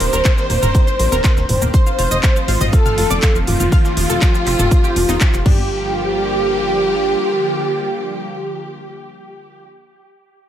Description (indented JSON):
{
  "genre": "progressive house",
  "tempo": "121 BPM",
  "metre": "4/4",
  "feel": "straight",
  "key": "G minor",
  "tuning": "A4 = 440 Hz",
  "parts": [
    { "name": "wide unison lead", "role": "melody", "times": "0.0-9.7 s", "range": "F4 to C5", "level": "-20 LUFS", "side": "right 1 dB", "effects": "sidechain pumping, dub echo" },
    { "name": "warm studio violin section", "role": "second line", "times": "0.0-9.7 s", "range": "F4 to C5", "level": "-26 LUFS", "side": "left 1 dB", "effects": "sidechain pumping, dub echo" },
    { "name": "supersaw pad", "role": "sustained chords", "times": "0.0-9.7 s", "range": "D3 to G4", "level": "-25 LUFS", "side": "right 1 dB", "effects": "phaser, sidechain pumping" },
    { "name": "analog pluck", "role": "arpeggios", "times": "0.0-9.7 s", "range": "F3 to F5", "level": "-25 LUFS", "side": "equal", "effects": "wide subtle chorus, sidechain pumping, dub echo" },
    { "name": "plucky analog bass", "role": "bass", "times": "0.0-7.2 s", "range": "Eb1 to Bb1", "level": "-21 LUFS", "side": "equal", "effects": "sidechain pumping" },
    { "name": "breakbeat sampler-style drum kit", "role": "drums", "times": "0.0-5.5 s", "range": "hi-hat, snare drum", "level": "-32 LUFS", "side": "equal", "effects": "none" },
    { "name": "house drum kit", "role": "drums", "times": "0.0-5.6 s", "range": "crash cymbal, handclaps, hi-hat, shaker", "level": "-24 LUFS", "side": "equal", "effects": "none" },
    { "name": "electronic kick drum", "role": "drums", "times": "0.3-5.6 s", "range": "none", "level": "-13 LUFS", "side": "equal", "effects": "none" },
    { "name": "electronic toms and congas", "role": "percussion", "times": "0.6-5.7 s", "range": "none", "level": "-23 LUFS", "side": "left 1 dB", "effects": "sidechain pumping on toms, sidechain pumping on perc" }
  ],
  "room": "light reverb, digital ambience",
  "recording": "none",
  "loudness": "-13 LUFS",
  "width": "side -10 dB against mid",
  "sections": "0.0-5.7 A section; 5.7-9.7 B section",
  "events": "drop 0.0-5.7",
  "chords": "0.0 Ebmaj7; 1.7 F7; 5.5 Gm7"
}